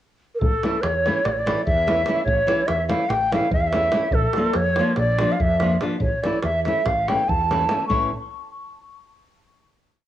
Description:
balkan folk, Balkan wedding band; 288 BPM (eighths); 9/8; straight; A phrygian dominant; A4 = 440 Hz
breathy bright ney; melody; 0.3-8.1 s; A4 to C#6; -22 LUFS; equal; cassette tape, plate reverb, analog delay
woody fretless electric bass; bass; 0.4-8.1 s; A1 to F2; -25 LUFS; equal
davul; percussion; 0.4-8.1 s; -27 LUFS; right 2 dB
nylon-string guitar; accompaniment; 0.6-8.1 s; E3 to F4; -26 LUFS; left 1 dB; cassette tape, plate reverb
moderate studio reverb, RT60 0.6 s; home recording on cassette, small room ambience; -18 LUFS; side -12 dB against mid
0.0-0.4 pickup bar; 0.4-7.9 A section; 7.9-9.8 final chord
0.4 A; 4.1 Bb; 6.0 A
0.20 | 0.41 0.61 0.81 1.02 1.23 1.43 1.64 1.84 2.05 | 2.26 2.46 2.67 2.88 3.08 3.29 3.50 3.71 3.91 | 4.12 4.33 4.54 4.75 4.96 5.17 5.37 5.58 5.79 | 6.00 6.21 6.42 6.63 6.84 7.05 7.26 7.47 7.68 | 7.89 8.10

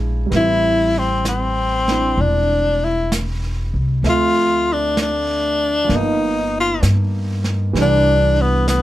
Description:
jazz ballad; 65 BPM; 4/4; swing 68% on 8ths; A4 = 439 Hz
dark grand piano; accompaniment; 0.0-8.8 s; E3 to E5; -23 LUFS; right 4 dB
upright bass; bass; 0.0-8.8 s; E1 to G2; -20 LUFS; equal
vintage brush drum kit; drums; 0.3-8.8 s; brushed snare drum, hi-hat, snare drum; -27 LUFS; right 2 dB
clear tenor saxophone; melody; 0.4-8.8 s; B3 to F4; -17 LUFS; left 2 dB
light reverb; -15 LUFS; side -14 dB against mid
0.0-8.8 A section
0.3 Am9; 4.0 Dm9; 5.9 G7alt; 7.7 Cmaj9
| 0.31 1.25 2.18 3.11 | 4.04 4.97 5.89 6.82 | 7.74 8.67

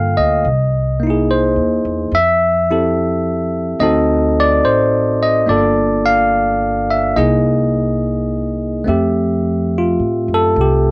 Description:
jazz ballad; 72 BPM; 4/4; swing 68% on 8ths; F major; A4 = 440 Hz
barky tine electric piano; accompaniment; 0.0-10.9 s; D3 to G5; -14 LUFS; equal; cassette tape
upright bass; bass; 0.0-10.9 s; G1 to A2; -19 LUFS; equal
light reverb; home recording on cassette; -13 LUFS; side -27 dB against mid
0.0-8.9 A section; 8.9-10.9 B section
0.5 C7alt; 2.1 Fmaj7; 3.8 D7b9; 5.5 Gm7; 7.2 C7alt; 8.9 Fmaj7
0.46 1.30 | 2.13 2.97 3.80 4.64 | 5.48 6.31 7.16 8.01 | 8.87 9.72 10.56

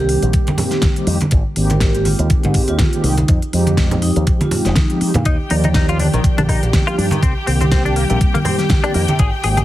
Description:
nu-disco, nu disco; 122 BPM; 4/4; swing 56% on 16ths; A4 = 439 Hz
vibraphone with soft mallets; melody; 0.0-5.3 s; Eb4 to Bb4; -26 LUFS; right 2 dB; ping-pong delay
mellow synth brass; accompaniment; 0.0-9.6 s; Eb3 to G5; -20 LUFS; equal; chorus, sidechain pumping
fingered electric bass with an envelope filter; bass; 0.0-9.6 s; F1 to Bb2; -18 LUFS; equal
pop drum kit; drums; 0.1-9.6 s; hi-hat, rim click, snare drum; -24 LUFS; equal
electronic kick drum; drums; 0.3-9.3 s; -16 LUFS; equal
congas; percussion; 0.5-9.6 s; -22 LUFS; right 1 dB
clear symphonic string section; sustained chords; 5.3-9.6 s; G4 to G5; -25 LUFS; left 1 dB; sidechain pumping
direct-recorded clean electric guitar; riff; 5.3-9.6 s; C3 to Ab4; -23 LUFS; left 4 dB; analog chorus, ping-pong delay
light reverb, studio ambience; heavily compressed radio sound, multiband compression; -13 LUFS; side -14 dB against mid
0.0-9.6 A section
0.0 Cm7; 1.3 Abmaj9; 3.3 Fm9; 5.3 Ebmaj9; 7.2 Cm7
0.34 0.83 | 1.32 1.81 2.31 2.80 | 3.29 3.78 4.27 4.76 | 5.26 5.75 6.24 6.73 | 7.22 7.71 8.21 8.70 | 9.19

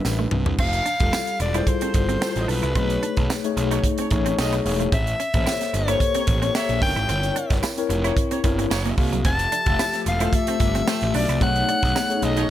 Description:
polished 1980s jazz-funk pop; 111 BPM; 4/4; swing 54% on 16ths; A4 = 442 Hz
clear soprano saxophone; melody; 0.0-12.5 s; B4 to A5; -25 LUFS; left 2 dB
mellow tine electric piano; accompaniment; 0.0-12.5 s; G3 to E#5; -26 LUFS; left 5 dB; medium stereo tremolo, lush chorus
fuzz picked electric bass; bass; 0.0-12.4 s; E1 to C2; -25 LUFS; right 1 dB; overdrive
tight funk drum kit; drums; 0.0-12.5 s; crash cymbal, hi-hat, kick drum, snare drum, toms; -24 LUFS; right 1 dB
tambourine; percussion; 0.1-12.1 s; -37 LUFS; right 8 dB
semi-hollow electric guitar; riff; 0.2-12.4 s; F#3 to E4; -32 LUFS; right 5 dB; wide subtle chorus
warm horn section; second line; 1.5-12.5 s; A3 to D#5; -33 LUFS; right 3 dB; ping-pong delay
hollow soft pad; sustained chords; 9.3-12.5 s; F3 to E5; -33 LUFS; right 2 dB; chorus
small room ambience; -19 LUFS; side -12 dB against mid
0.6-12.5 A section
drum fill 0.0-0.6
0.0 Em7/A; 0.6 Fmaj9; 2.8 B13; 4.9 A7b9; 6.8 C7b9/G; 8.7 F#maj9; 9.2 Fmaj9; 11.4 B13
0.05 | 0.59 1.13 1.68 2.22 | 2.76 3.30 3.84 4.38 | 4.92 5.46 6.00 6.55 | 7.09 7.63 8.17 8.71 | 9.25 9.79 10.33 10.87 | 11.41 11.95 12.49

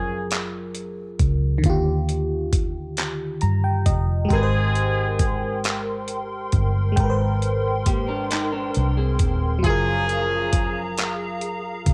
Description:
slow six-eight R&B; 45 BPM (dotted quarters); 6/8; straight; Ab lydian; A4 = 436 Hz
FM electric piano; accompaniment; 0.0-11.9 s; D3 to Bb5; -30 LUFS; equal; chorus, cassette tape
warm horn section; stabs; 0.0-0.3, 4.3-5.6, 9.6-10.9 s; Eb3 to Ab4; -28 LUFS; equal; cassette tape
vintage muted fingered electric bass; bass; 0.0-11.9 s; Eb1 to G2; -26 LUFS; equal
dusty soul sampler-style drum kit; drums; 0.3-11.9 s; handclaps, hi-hat, kick drum; -26 LUFS; equal; overdrive, cassette tape
hollow soft pad; sustained chords; 4.3-11.9 s; Ab4 to C6; -33 LUFS; equal; ensemble chorus, cassette tape
electric guitar at the edge of break-up; second line; 7.9-9.6 s; Bb3 to C5; -32 LUFS; equal; cassette tape, tape echo
light reverb; home recording on cassette; -22 LUFS; mono
0.0-11.9 A section
FM electric piano fill 3.0-4.3
0.0 Gbmaj9; 1.6 Ebmaj9; 4.3 Abmaj9; 9.6 Gbmaj9
0.31 | 1.64 2.97 | 4.31 5.64 | 6.97 8.31 | 9.64 10.97

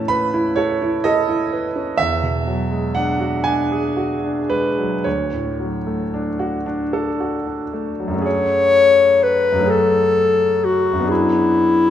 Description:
classical, impressionist duo for clarinet and grand piano; 37-43 BPM (dotted quarters); 6/8; rubato; F# minor; A4 = 441 Hz
clear grand piano; accompaniment; 0.0-11.9 s; D2 to B5; -19 LUFS; right 2 dB
warm clarinet; melody; 8.3-11.9 s; E4 to C#5; -14 LUFS; left 3 dB
wet recital hall reverb, RT60 1.6 s; minimal, uncompressed stereo recording; -16 LUFS; side -10 dB against mid
0.0-8.2 A section; 8.2-11.9 B section
0.0 Aadd9; 2.0 E9; 5.1 Dmaj7; 8.2 F#madd9; 11.1 E9/F#
0.58 | 2.00 3.46 | 5.05 6.66 | 8.25 9.68 | 11.10

